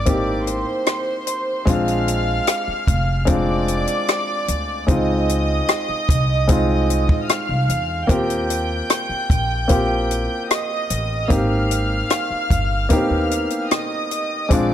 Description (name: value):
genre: lush 1970s-style soul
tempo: 75 BPM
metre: 4/4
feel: straight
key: unclear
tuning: A4 = 440 Hz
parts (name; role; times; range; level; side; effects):
- warm studio string section; second line; 0.0-14.7 s; C5 to G6; -24 LUFS; right 2 dB; none
- warm grand piano; accompaniment; 0.0-14.7 s; Ab3 to G4; -22 LUFS; left 1 dB; none
- upright bass; bass; 0.0-14.7 s; F1 to Fb2; -23 LUFS; equal; none
- compact cocktail drum kit; drums; 0.1-14.7 s; hi-hat, kick drum, rim click; -20 LUFS; equal; none
room: light reverb, studio reverb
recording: none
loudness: -17 LUFS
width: side -10 dB against mid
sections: 0.0-14.7 A section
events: none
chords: 0.0 Abmaj7; 1.7 Bb9; 4.9 Dbmaj9; 8.1 Eb69; 11.3 Abmaj7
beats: 0.07 0.87 | 1.67 2.48 3.28 4.08 | 4.88 5.68 6.49 7.29 | 8.09 8.89 9.70 10.50 | 11.30 12.10 12.90 13.71 | 14.51